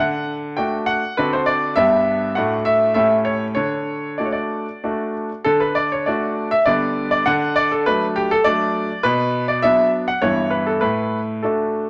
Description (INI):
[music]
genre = classical-period piano sonatina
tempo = 100 BPM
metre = 3/4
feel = straight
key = D major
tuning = A4 = 439 Hz
[part]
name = bright baby grand piano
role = solo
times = 0.0-11.9 s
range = G2 to G5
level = -19 LUFS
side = equal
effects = none
[sound]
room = moderate stone room reverb, RT60 1.2 s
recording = none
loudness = -19 LUFS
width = mono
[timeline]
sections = 0.0-5.5 A section; 5.5-11.9 B section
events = none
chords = 0.0 D; 1.2 D7; 1.8 G; 2.4 D/A; 3.0 A7; 3.6 D; 6.7 G/D; 7.3 D; 9.0 Bm; 10.2 Em/G; 10.8 D/A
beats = 0.58 1.17 | 1.76 2.36 2.96 | 3.57 4.19 4.82 | 5.45 6.06 6.66 | 7.26 7.86 8.45 | 9.04 9.63 10.23 | 10.83 11.44